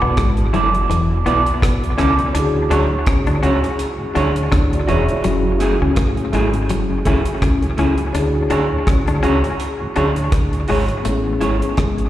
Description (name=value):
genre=lovers rock reggae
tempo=83 BPM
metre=4/4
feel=swing 56% on 16ths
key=unclear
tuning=A4 = 439 Hz
part: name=mellow tine electric piano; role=accompaniment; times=0.0-12.1 s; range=B3 to A5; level=-24 LUFS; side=left 2 dB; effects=medium stereo tremolo, dub echo
part: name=mellow tonewheel organ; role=accompaniment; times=0.0-12.1 s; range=D2 to G#4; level=-28 LUFS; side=right 1 dB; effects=overdrive, chorus vibrato, slow rotary speaker, dub echo
part: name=semi-hollow electric guitar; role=riff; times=0.0-12.0 s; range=E3 to D4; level=-23 LUFS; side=left 4 dB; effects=tremolo, dub echo, slapback echo
part: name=deep dub fingered electric bass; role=bass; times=0.0-12.1 s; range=E1 to D2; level=-19 LUFS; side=equal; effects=none
part: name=deep reggae drum kit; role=drums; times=0.2-12.1 s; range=hi-hat, kick drum, rim click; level=-21 LUFS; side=equal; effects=dub echo
part: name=electric guitar through a small old amp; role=stabs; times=0.5-11.6 s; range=A3 to D5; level=-21 LUFS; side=right 3 dB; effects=spring reverb, dub echo, slapback echo
room=light reverb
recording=live gig heard through the venue's PA, recital hall reverb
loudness=-15 LUFS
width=side -13 dB against mid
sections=0.0-11.0 A section; 11.0-12.1 B section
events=none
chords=0.0 E7sus4; 2.3 Dmaj9#11; 5.2 F#m9; 8.1 Dmaj9#11; 11.0 Amaj7